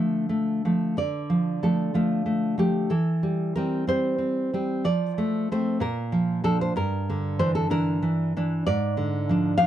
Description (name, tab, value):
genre	romantic piece for solo classical guitar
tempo	63 BPM (dotted quarters)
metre	6/8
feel	uneven beats, rubato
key	D minor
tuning	A4 = 440 Hz
part	nylon-string guitar	solo	0.0-9.7 s	G2 to F5	-22 LUFS	equal	none
room	light reverb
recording	dry, close 1970s-style studio recording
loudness	-22 LUFS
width	side -11 dB against mid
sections	1.0-9.7 A section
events	none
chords	0.0 Dm; 2.9 C/E; 4.9 F; 5.8 Bb; 6.8 Em7b5/G; 8.7 E7b9/G# (rootless)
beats	| 0.98 1.96 | 2.93 3.91 | 4.87 5.83 | 6.77 7.71 | 8.65 9.57